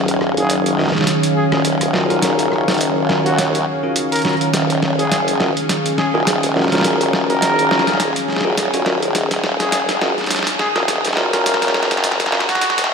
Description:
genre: glitch hop.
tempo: 104 BPM.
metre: 4/4.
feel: swing 57% on 16ths.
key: Eb minor.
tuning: A4 = 440 Hz.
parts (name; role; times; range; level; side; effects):
warm analog pad; sustained chords; 0.0-12.9 s; Eb3 to F5; -22 LUFS; equal; chorus.
formant-sweep wobble bass; bass; 0.0-12.9 s; Eb1 to Eb2; -20 LUFS; equal; chorus, tube saturation, high-pass filter.
ethereal airy pad; texture; 0.0-12.9 s; Eb4 to Db5; -26 LUFS; right 1 dB; ensemble chorus, built-in reverb, phaser.
boom bap sampler-style drum kit; drums; 0.1-12.9 s; hi-hat, rim click, snare drum; -20 LUFS; equal; none.
mellow trumpet; melody; 0.4-12.7 s; Gb4 to Bb4; -23 LUFS; equal; ping-pong delay.
bell-like tine electric piano; stabs; 0.8-12.5 s; Db4 to Db5; -23 LUFS; left 1 dB; low-pass filter, ping-pong delay.
room: wet lush hall reverb, RT60 1.8 s.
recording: dreamy mix soaked in reverb, high-pass filter.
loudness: -14 LUFS.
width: side -5 dB against mid.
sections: 0.0-12.9 A section.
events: build-up 0.0-12.9; drum fill 0.0-12.9; filter sweep 0.0-12.9.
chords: 0.0 Ebm9.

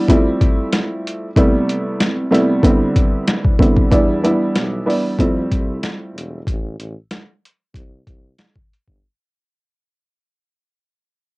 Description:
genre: hip hop, boom-bap hip-hop.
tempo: 94 BPM.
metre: 4/4.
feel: swing 54% on 16ths.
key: C major.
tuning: A4 = 438 Hz.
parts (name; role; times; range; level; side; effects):
dark upright piano; accompaniment; 0.0-6.4 s; C3 to E4; -16 LUFS; right 1 dB; cassette tape, high-pass filter, low-pass filter.
boom bap sampler-style drum kit; drums; 0.1-9.0 s; hi-hat, kick drum, snare drum; -17 LUFS; equal; overdrive, cassette tape.
mellow tuba; bass; 3.9-9.0 s; E1 to F2; -26 LUFS; equal; none.
room: light reverb.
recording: home recording on cassette.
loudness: -14 LUFS.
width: side -24 dB against mid.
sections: 0.0-3.9 A section; 3.9-9.0 B section.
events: break 0.0-3.9, 6.5-9.0; fade-out 3.9-9.0.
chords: 0.1 Fmaj7; 1.4 Am7; 2.6 Cmaj7; 3.9 Em7; 5.2 Fmaj7; 6.5 N.C.; 7.7 C5.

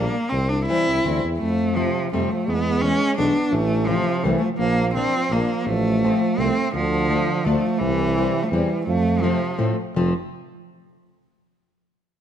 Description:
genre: alpine folk, alpine dance band.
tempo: 169 BPM.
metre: 3/4.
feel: rubato.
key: F major.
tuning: A4 = 444 Hz.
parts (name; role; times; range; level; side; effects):
rich cello; melody; 0.0-9.6 s; E3 to E4; -22 LUFS; equal; none.
fingerpicked plugged-in steel-string acoustic guitar; accompaniment; 0.0-10.1 s; E3 to D4; -26 LUFS; left 4 dB; none.
mellow tuba; bass; 0.0-10.1 s; F1 to A2; -25 LUFS; equal; none.
mellow euphonium; second line; 0.7-9.6 s; C3 to C4; -26 LUFS; right 6 dB; none.
room: light reverb.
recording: none.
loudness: -19 LUFS.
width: side -9 dB against mid.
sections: 0.0-10.0 A section; 10.0-11.0 B section.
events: none.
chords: 0.3 C; 1.4 F; 2.5 E7; 3.5 Am; 4.6 Bb; 5.7 F/A; 6.7 Dm; 7.8 C; 8.9 F.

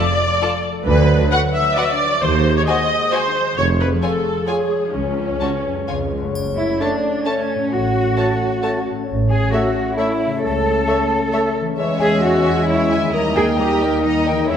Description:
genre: cinematic, playful, whimsical film cue.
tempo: 133 BPM.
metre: 3/4.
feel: straight.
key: F# minor.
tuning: A4 = 441 Hz.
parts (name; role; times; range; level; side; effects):
warm studio violin section; melody; 0.0-14.6 s; E5 to A#5; -30 LUFS; left 3 dB; none.
warm studio violin section; second line; 0.0-14.6 s; F4 to E5; -29 LUFS; left 3 dB; none.
dark studio viola section; accompaniment; 0.0-14.6 s; E3 to F#5; -21 LUFS; equal; none.
concert harp; arpeggios; 0.0-14.6 s; F#2 to C#5; -25 LUFS; left 6 dB; none.
warm studio cello section; bass; 0.9-14.6 s; C#2 to A4; -22 LUFS; right 2 dB; none.
warm studio double bass section; bass; 0.9-14.6 s; E#1 to E2; -25 LUFS; right 3 dB; none.
warm tuba; bass; 0.9-6.3 s; E#1 to D#2; -24 LUFS; right 4 dB; none.
dark French horn section; sustained chords; 6.4-14.6 s; G#3 to D#4; -24 LUFS; left 4 dB; none.
triangle; percussion; 6.4-7.2 s; none; -40 LUFS; left 3 dB; none.
mellow hollow silver concert flute; second line; 6.6-14.6 s; C#5 to A5; -26 LUFS; left 1 dB; none.
warm clarinet; second line; 6.8-14.6 s; A#4 to C#5; -28 LUFS; right 1 dB; none.
warm oboe; second line; 6.8-14.6 s; D#5 to A5; -28 LUFS; equal; none.
mellow bassoon; accompaniment; 6.8-14.6 s; G#3 to A#3; -26 LUFS; right 2 dB; none.
room: wet scoring stage reverb, RT60 1.6 s.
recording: none.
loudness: -16 LUFS.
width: side -8 dB against mid.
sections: 0.0-6.3 A section; 6.3-14.6 B section.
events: none.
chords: 0.0 Dm/F; 0.9 Bm/D; 2.2 G#7/D#; 3.6 C#/E#; 4.9 F#m/C#; 5.9 C#; 6.3 F#m; 7.7 F#m/A; 9.1 A; 10.4 A/C#; 11.8 C#m/E; 13.1 D#.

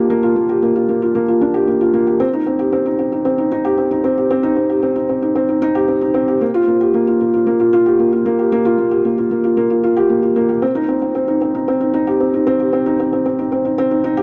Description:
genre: electronica.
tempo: 114 BPM.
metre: 4/4.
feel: straight.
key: unclear.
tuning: A4 = 440 Hz.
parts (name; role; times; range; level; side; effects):
felt-muted upright piano; solo; 0.0-14.2 s; Bb3 to G4; -16 LUFS; equal; none.
room: moderate huge ambient reverb, RT60 7.4 s.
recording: none.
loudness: -16 LUFS.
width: mono.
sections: 0.0-14.2 A section.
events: none.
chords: none.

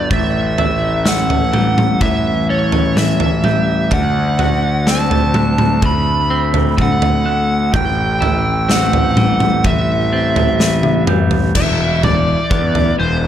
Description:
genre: post-rock.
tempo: 63 BPM.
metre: 4/4.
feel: straight.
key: unclear.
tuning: A4 = 438 Hz.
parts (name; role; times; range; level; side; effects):
bluesy overdriven lead guitar; melody; 0.0-13.3 s; C5 to B5; -19 LUFS; right 1 dB; distortion, analog delay.
clean electric guitar; arpeggios; 0.0-13.3 s; A2 to F#4; -21 LUFS; left 4 dB; spring reverb, analog delay.
glockenspiel with rubber mallets; arpeggios; 0.0-11.6 s; E6 to G7; -25 LUFS; right 6 dB; analog delay.
fuzz picked electric bass; bass; 0.0-13.3 s; E1 to E2; -18 LUFS; equal; overdrive.
big rock drum kit; drums; 0.1-13.0 s; crash cymbal, kick drum, snare drum, toms; -17 LUFS; right 1 dB; none.
room: light reverb.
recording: dark, warm production.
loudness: -12 LUFS.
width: side -10 dB against mid.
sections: 0.0-11.6 A section; 11.6-13.3 B section.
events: drum fill 10.6-11.6.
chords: 0.1 A7; 3.9 D7; 7.7 Am7; 11.6 Bsus4/E.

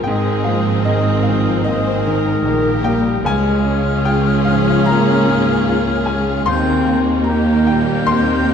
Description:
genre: cinematic, emotional film score for orchestra.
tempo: 75 BPM.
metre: 4/4.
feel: rubato.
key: unclear.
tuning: A4 = 439 Hz.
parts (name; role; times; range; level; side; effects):
dark studio violin section; melody; 0.0-8.5 s; G4 to C5; -27 LUFS; left 4 dB; none.
rich studio violin section; second line; 0.0-8.5 s; Eb4 to Ab4; -28 LUFS; left 5 dB; none.
bright baby grand piano; accompaniment; 0.0-8.5 s; Db2 to C6; -22 LUFS; left 2 dB; none.
rich studio viola section; accompaniment; 0.0-8.5 s; Bb3 to Db4; -23 LUFS; right 1 dB; none.
dark studio cello section; bass; 0.0-8.5 s; Db2 to Bb2; -22 LUFS; right 3 dB; none.
rich studio double bass section; bass; 0.0-8.5 s; Ab1 to Eb2; -20 LUFS; right 3 dB; none.
mellow clarinet; second line; 0.1-8.5 s; Ab4 to Bb4; -26 LUFS; left 4 dB; none.
silver concert flute; second line; 0.1-8.5 s; Eb6 to G6; -26 LUFS; left 2 dB; none.
warm French horn section; sustained chords; 0.1-8.5 s; Eb3 to C4; -20 LUFS; left 2 dB; none.
room: moderate scoring stage reverb, RT60 1.7 s.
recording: dark, warm production.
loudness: -13 LUFS.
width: side -7 dB against mid.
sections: 0.0-8.5 A section.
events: none.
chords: 0.1 Absus2; 3.2 Db; 6.5 Eb.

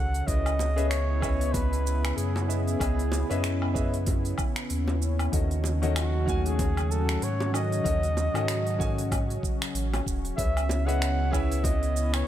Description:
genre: sunset chillout.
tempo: 95 BPM.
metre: 4/4.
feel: swing 58% on 16ths.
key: C# minor.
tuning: A4 = 441 Hz.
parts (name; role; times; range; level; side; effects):
warm flugelhorn; melody; 0.0-12.3 s; F#4 to F#5; -33 LUFS; equal; ping-pong delay.
lush unison pad; sustained chords; 0.0-12.3 s; C#3 to A4; -33 LUFS; equal; chorus, vintage 12-bit sampler grit.
warm sub bass; bass; 0.0-12.2 s; D#1 to G#2; -27 LUFS; equal; tube saturation.
deep house drum kit; drums; 0.1-12.2 s; finger snaps, hi-hat, shaker, woodblock; -35 LUFS; equal; none.
warm grand piano; accompaniment; 0.3-12.3 s; D#3 to G#5; -33 LUFS; moving between left 6 dB and right 1 dB; auto-pan, ping-pong delay.
electronic kick drum; drums; 0.3-11.8 s; none; -30 LUFS; equal; none.
bongos; percussion; 0.6-11.8 s; none; -38 LUFS; equal; none.
room: light reverb, digital ambience.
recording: none.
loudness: -24 LUFS.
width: side -11 dB against mid.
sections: 0.0-12.3 A section.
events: none.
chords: 0.3 C#m9; 5.3 D#m7b5; 10.4 C#m9.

